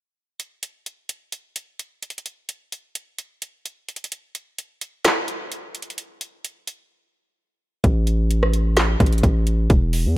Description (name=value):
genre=hip hop, trap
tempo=129 BPM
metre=4/4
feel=half-time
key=unclear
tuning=A4 = 440 Hz
part: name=trap drum kit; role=drums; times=0.4-10.0 s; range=handclaps, hi-hat, kick drum, rim click, snare drum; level=-21 LUFS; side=equal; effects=none
part: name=distorted 808-style bass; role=bass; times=7.8-10.2 s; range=E1 to E2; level=-19 LUFS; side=equal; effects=distortion
room=digital ambience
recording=none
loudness=-20 LUFS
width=side -17 dB against mid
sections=0.0-7.8 A section; 7.8-10.2 B section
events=break 0.0-0.4, 6.9-7.8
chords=none